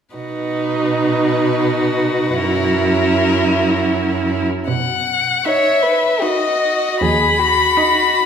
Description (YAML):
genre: classical, slow romantic movement for string quartet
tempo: 79 BPM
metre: 3/4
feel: uneven beats, rubato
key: B major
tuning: A4 = 440 Hz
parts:
  - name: rich violin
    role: melody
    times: 0.1-8.3 s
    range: A#4 to B5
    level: -18 LUFS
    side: left 4 dB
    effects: none
  - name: rich cello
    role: bass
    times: 0.1-7.6 s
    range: D#2 to B2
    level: -21 LUFS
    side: right 3 dB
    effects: none
  - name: warm violin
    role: second line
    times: 0.2-8.3 s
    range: F#4 to C#5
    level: -20 LUFS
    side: left 1 dB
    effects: none
  - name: rich viola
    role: accompaniment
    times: 0.2-8.3 s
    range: D#4 to E4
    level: -20 LUFS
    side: right 3 dB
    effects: none
room: wet recital hall reverb, RT60 1.7 s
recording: recorded in a church or concert hall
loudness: -14 LUFS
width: side -7 dB against mid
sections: 0.2-4.7 A section; 4.7-8.3 B section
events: none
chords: 0.2 B; 2.4 F#7; 4.7 B; 7.0 B/D#